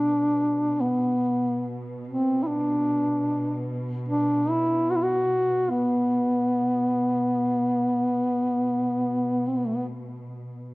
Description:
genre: caucasian folk, Caucasian lament.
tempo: 56-76 BPM.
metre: 4/4.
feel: rubato.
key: B phrygian.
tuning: A4 = 440 Hz.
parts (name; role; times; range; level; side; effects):
dark duduk; melody; 0.0-9.9 s; A3 to F#4; -22 LUFS; equal; none.
dark studio cello section; drone; 0.0-10.7 s; B2; -34 LUFS; right 1 dB; none.
room: moderate recital hall reverb, RT60 1.7 s.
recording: worn, warbling old tape, cassette tape, warbly pitch drift.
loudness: -22 LUFS.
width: side -24 dB against mid.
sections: 0.0-10.7 A section.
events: none.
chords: none.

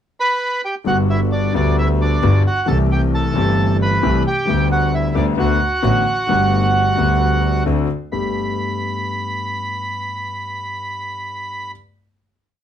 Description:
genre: tango.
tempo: 132 BPM.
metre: 4/4.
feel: rubato.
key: G major.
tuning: A4 = 441 Hz.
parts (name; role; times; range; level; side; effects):
bandoneon; melody; 0.2-11.7 s; D4 to B5; -20 LUFS; right 2 dB; none.
warm concert grand piano; accompaniment; 0.8-11.7 s; G1 to G4; -19 LUFS; left 3 dB; none.
clear double bass; bass; 0.9-8.3 s; G1 to D2; -20 LUFS; right 2 dB; none.
room: light reverb.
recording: close, detailed microphones.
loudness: -16 LUFS.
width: side -9 dB against mid.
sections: 0.0-0.9 pickup bar; 0.9-8.1 A section; 8.1-11.8 final chord.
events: none.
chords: 0.0 G; 0.9 Gmaj7; 2.7 C6; 4.5 G/D; 5.4 D6; 6.3 Gadd9; 7.7 D7; 8.1 Gadd9.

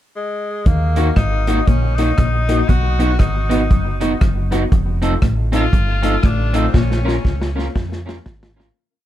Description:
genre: ska.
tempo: 118 BPM.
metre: 4/4.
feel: swing 60% on 8ths.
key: Eb minor.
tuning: A4 = 440 Hz.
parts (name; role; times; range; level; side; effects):
clear tenor saxophone; melody; 0.2-7.6 s; Ab3 to F#4; -24 LUFS; left 2 dB; tape echo.
clean electric guitar; riff; 0.7-8.4 s; F2 to F3; -27 LUFS; left 5 dB; tape echo.
deep dub fingered electric bass; bass; 0.7-8.7 s; F1 to F2; -19 LUFS; equal; none.
vintage drum kit; drums; 0.7-8.7 s; hi-hat, kick drum, rim click, snare drum; -18 LUFS; equal; none.
electric guitar at the edge of break-up; accompaniment; 1.0-8.7 s; Bb3 to Bb4; -23 LUFS; right 4 dB; none.
warm upright piano; stabs; 1.0-8.7 s; A3 to Gb4; -24 LUFS; left 4 dB; tape echo.
room: light reverb.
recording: dark, warm production.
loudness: -14 LUFS.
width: side -12 dB against mid.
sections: 0.0-0.7 pickup bar; 0.7-8.8 head.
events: fade-out 6.7-8.8; drum fill 6.7-8.8.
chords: 0.0 N.C.; 0.7 Ebm; 2.7 B; 4.7 F7; 6.7 Bbm.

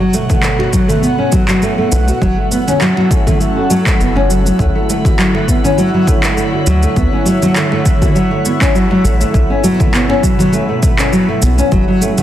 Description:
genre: organic downtempo.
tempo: 101 BPM.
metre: 4/4.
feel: swing 54% on 16ths.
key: unclear.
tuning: A4 = 441 Hz.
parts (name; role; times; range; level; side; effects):
airy breathy pad; sustained chords; 0.0-12.2 s; B2 to F#5; -20 LUFS; right 1 dB; chorus, phaser, sidechain pumping.
nylon-string guitar; arpeggios; 0.0-12.2 s; F#3 to F#4; -14 LUFS; equal; tape echo.
drifting glass-harmonics texture; texture; 1.2-12.2 s; E4 to E5; -25 LUFS; equal; chorus, built-in reverb.
electronic cabasa and handclaps; drums; 0.1-12.2 s; none; -21 LUFS; right 1 dB; overdrive.
congas; percussion; 0.1-12.2 s; none; -23 LUFS; right 2 dB; none.
electronic kick drum; drums; 0.3-11.8 s; none; -15 LUFS; equal; overdrive.
round analog bass; bass; 1.9-11.8 s; F#1 to D2; -13 LUFS; equal; sidechain pumping.
room: moderate echo chamber reverb, RT60 2.2 s.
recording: dense, heavily limited modern master.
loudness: -10 LUFS.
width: side -12 dB against mid.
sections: 0.0-12.2 A section.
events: none.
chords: 0.0 Bsus2; 2.2 F#m7; 4.6 Dmaj7; 9.3 Bsus2; 11.7 F#m7.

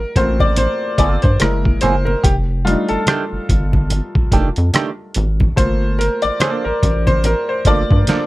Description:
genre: R&B, neo-soul.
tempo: 72 BPM.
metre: 4/4.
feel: swing 57% on 16ths.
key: G minor.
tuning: A4 = 443 Hz.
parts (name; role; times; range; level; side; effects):
clear baby grand piano; accompaniment; 0.0-8.3 s; G3 to D5; -19 LUFS; left 1 dB; none.
rubbery square bass; bass; 0.0-8.0 s; F1 to G2; -18 LUFS; equal; none.
boom bap sampler-style drum kit; drums; 0.2-8.3 s; hi-hat, kick drum, rim click, snare drum; -16 LUFS; equal; none.
congas; percussion; 0.2-8.3 s; none; -25 LUFS; right 2 dB; none.
hollow-body jazz guitar; second line; 0.6-8.2 s; Eb3 to A4; -20 LUFS; right 5 dB; wah.
room: little or no reverb.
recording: dark, warm production.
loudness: -14 LUFS.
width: side -18 dB against mid.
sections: 0.0-8.3 A section.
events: grand piano solo 0.0-8.3; drum fill 8.1.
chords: 0.0 Gm11; 1.4 F#9; 2.2 F13; 5.6 Gm9.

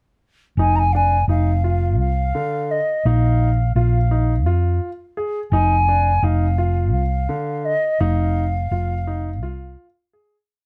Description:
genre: progressive instrumental, progressive.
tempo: 170 BPM (eighths).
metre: 7/8.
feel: straight.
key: F dorian.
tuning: A4 = 441 Hz.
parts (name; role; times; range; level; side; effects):
mellow wooden flute; melody; 0.6-9.8 s; Eb5 to Bb5; -24 LUFS; equal; delay.
warm concert grand piano; arpeggios; 0.6-10.3 s; D3 to Ab4; -29 LUFS; equal; none.
hollow-body short-scale fingered electric bass; bass; 0.6-9.8 s; F1 to F2; -20 LUFS; equal; none.
room: light reverb.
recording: none.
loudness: -19 LUFS.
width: mono.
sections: 0.6-10.5 A section.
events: fade-out 8.0-10.5.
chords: 0.6 Fm7; 3.0 Bbsus4; 5.5 Fm7; 8.0 F5.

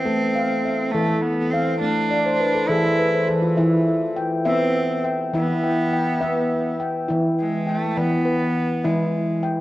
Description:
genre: world meditative, meditative tuned percussion.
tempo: 68 BPM (dotted quarters).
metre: 6/8.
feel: straight.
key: unclear.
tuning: A4 = 440 Hz.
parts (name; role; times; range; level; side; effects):
clear cello; melody; 0.0-9.4 s; E3 to E4; -24 LUFS; right 2 dB; none.
handpan; arpeggios; 0.0-9.5 s; E3 to G5; -20 LUFS; left 1 dB; ping-pong delay.
room: wet recital hall reverb, RT60 1.7 s, small room reverb.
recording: worn, warbling old tape, cassette tape, warbly pitch drift.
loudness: -19 LUFS.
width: side -16 dB against mid.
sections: 0.0-7.1 A section; 7.1-9.6 B section.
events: handpan fill 2.1-3.6.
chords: 0.1 Am; 3.6 E5.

